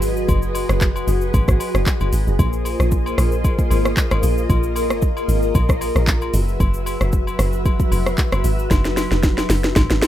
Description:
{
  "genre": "amapiano",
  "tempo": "114 BPM",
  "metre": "4/4",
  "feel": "swing 55% on 16ths",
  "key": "unclear",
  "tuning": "A4 = 436 Hz",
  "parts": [
    { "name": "ensemble organ-string", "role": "sustained chords", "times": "0.0-10.1 s", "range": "Gb3 to Fb5", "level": "-23 LUFS", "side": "left 1 dB", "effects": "ensemble chorus, sidechain pumping" },
    { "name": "deep log drum bass", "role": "bass", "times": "0.0-10.0 s", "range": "F1 to Bb1", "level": "-20 LUFS", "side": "equal", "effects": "none" },
    { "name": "afro-pop drum kit", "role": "drums", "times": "0.0-10.1 s", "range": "handclaps, hi-hat, kick drum, rim click, shaker, snare drum", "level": "-19 LUFS", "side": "equal", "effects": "none" },
    { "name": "agogo bells", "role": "percussion", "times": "0.3-10.1 s", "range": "none", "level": "-32 LUFS", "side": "left 4 dB", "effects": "none" }
  ],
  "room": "light reverb",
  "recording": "rough home demo mix",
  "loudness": "-16 LUFS",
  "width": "side -12 dB against mid",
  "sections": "0.0-10.1 A section",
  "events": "drum fill 8.7-10.1",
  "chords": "0.0 Gbsus4; 2.4 Bb9sus4; 6.3 Gb9sus4",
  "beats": "| 0.29 0.81 1.34 1.86 | 2.39 2.92 3.44 3.97 | 4.50 5.02 5.55 6.08 | 6.60 7.13 7.65 8.18 | 8.71 9.23 9.76"
}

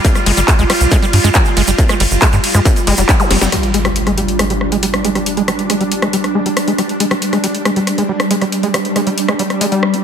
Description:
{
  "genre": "psychedelic trance",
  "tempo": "138 BPM",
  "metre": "4/4",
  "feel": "straight",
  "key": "unclear",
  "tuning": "A4 = 439 Hz",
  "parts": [
    { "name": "swarming drone", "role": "sustained chords", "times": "0.0-10.0 s", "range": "G3 to F4", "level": "-18 LUFS", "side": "right 1 dB", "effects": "built-in reverb, sidechain pumping" },
    { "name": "overdriven acid bass", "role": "riff", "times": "0.0-10.0 s", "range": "G3 to G4", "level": "-18 LUFS", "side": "moving between left 6 dB and right 7 dB", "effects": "distortion, auto-pan, sidechain pumping, tape echo" },
    { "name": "electronic kick drum", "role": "drums", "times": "0.0-3.2 s", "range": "none", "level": "-12 LUFS", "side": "equal", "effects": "distortion, studio ambience" },
    { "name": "techno drum kit", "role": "drums", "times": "0.0-10.0 s", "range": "handclaps, hi-hat, ride cymbal, rim click, snare drum", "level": "-18 LUFS", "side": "left 1 dB", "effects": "studio ambience, soft clipping on snare" },
    { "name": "egg shaker", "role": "percussion", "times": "0.0-3.5 s", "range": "none", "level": "-23 LUFS", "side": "right 2 dB", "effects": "none" },
    { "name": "tight sequencer bass", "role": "bass", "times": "0.3-3.5 s", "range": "F1 to G2", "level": "-14 LUFS", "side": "equal", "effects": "none" },
    { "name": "zap and impact", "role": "sound effects", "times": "3.2-5.3 s", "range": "none", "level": "-21 LUFS", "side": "equal", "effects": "none" }
  ],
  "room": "moderate plate reverb, RT60 1.6 s",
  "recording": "dense, heavily limited modern master",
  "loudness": "-12 LUFS",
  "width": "side -8 dB against mid",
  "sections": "0.0-3.5 A section; 3.5-10.0 B section",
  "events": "drop 0.0-3.5; drum fill 3.3; impact 3.5-5.3; filter sweep on acid bass 3.5-10.0",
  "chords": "0.0 G5",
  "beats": "| 0.05 0.48 0.92 1.35 | 1.78 2.22 2.65 3.09 | 3.52 3.96 4.39 4.83 | 5.26 5.70 6.13 6.57 | 7.00 7.44 7.87 8.31 | 8.74 9.18 9.61"
}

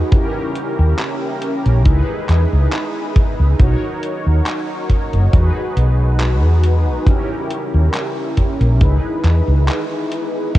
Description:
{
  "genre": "vaporwave",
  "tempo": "69 BPM",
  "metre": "4/4",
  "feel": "swing 54% on 16ths",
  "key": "unclear",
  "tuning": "A4 = 439 Hz",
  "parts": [
    { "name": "mellow synth brass", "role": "accompaniment", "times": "0.0-10.6 s", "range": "C#4 to C#5", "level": "-21 LUFS", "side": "equal", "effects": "lush chorus, vintage 12-bit sampler grit, tape echo" },
    { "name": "detuned 8-bit digital drum machine", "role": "drums", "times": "0.1-10.6 s", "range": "crash cymbal, handclaps, hi-hat", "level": "-29 LUFS", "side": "equal", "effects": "overdrive, vintage 12-bit sampler grit" },
    { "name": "kick drum", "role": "drums", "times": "0.1-10.6 s", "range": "none", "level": "-14 LUFS", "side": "equal", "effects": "vintage 12-bit sampler grit" },
    { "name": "woody fretless electric bass", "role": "bass", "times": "0.8-10.6 s", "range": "F#1 to E2", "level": "-13 LUFS", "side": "equal", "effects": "wide subtle chorus" },
    { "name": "lush unison pad", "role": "sustained chords", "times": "10.5-10.6 s", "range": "none", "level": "barely audible", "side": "none", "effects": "none" }
  ],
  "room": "light reverb, digital ambience",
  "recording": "cassette tape",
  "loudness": "-14 LUFS",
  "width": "side -15 dB against mid",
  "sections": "0.0-10.6 A section",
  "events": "break 9.7-10.5",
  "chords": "0.1 D#7b9 (rootless); 1.9 C#m7; 3.6 Bmaj9 (rootless); 5.3 Emaj7; 7.1 D#7b9 (rootless); 8.8 C#m7",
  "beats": "| 0.11 0.98 1.85 2.72 | 3.59 4.46 5.33 6.20 | 7.07 7.94 8.81 9.68 | 10.55"
}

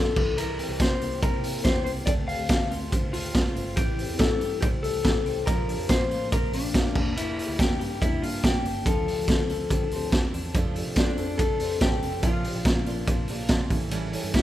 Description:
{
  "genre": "jangly indie pop",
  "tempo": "142 BPM",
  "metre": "4/4",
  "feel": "straight",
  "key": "D minor",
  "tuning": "A4 = 438 Hz",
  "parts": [
    { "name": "electric guitar through a small old amp", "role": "melody", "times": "0.0-14.4 s", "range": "D4 to F5", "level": "-30 LUFS", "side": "left 4 dB", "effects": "none" },
    { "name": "twelve-string electric guitar", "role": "arpeggios", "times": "0.0-14.4 s", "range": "E3 to A4", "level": "-33 LUFS", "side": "left 1 dB", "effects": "harmonic tremolo" },
    { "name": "vintage muted picked electric bass", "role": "bass", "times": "0.0-14.4 s", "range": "E1 to F3", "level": "-35 LUFS", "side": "right 1 dB", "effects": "none" },
    { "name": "raw garage drum kit", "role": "drums", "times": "0.2-14.4 s", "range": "crash cymbal, hi-hat, kick drum, ride cymbal, snare drum", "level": "-24 LUFS", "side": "right 1 dB", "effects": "none" },
    { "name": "picked steel-string acoustic guitar", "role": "accompaniment", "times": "10.5-14.4 s", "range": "A2 to C5", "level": "-36 LUFS", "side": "right 8 dB", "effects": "none" }
  ],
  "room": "light reverb, studio reverb",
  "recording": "rough home demo mix",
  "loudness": "-23 LUFS",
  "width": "side -13 dB against mid",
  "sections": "0.0-14.4 A section",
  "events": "none",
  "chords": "0.2 C7; 2.1 Dm7; 3.8 Am7; 5.5 Bb; 7.0 Em7b5; 8.9 Dm7; 10.5 F6; 12.2 Bb; 13.7 A7",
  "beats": "| 0.38 0.80 1.22 1.65 | 2.07 2.50 2.92 3.35 | 3.77 4.20 4.62 5.04 | 5.47 5.89 6.32 6.74 | 7.16 7.59 8.01 8.43 | 8.86 9.28 9.70 10.12 | 10.54 10.97 11.39 11.81 | 12.23 12.65 13.08 13.50 | 13.92 14.34"
}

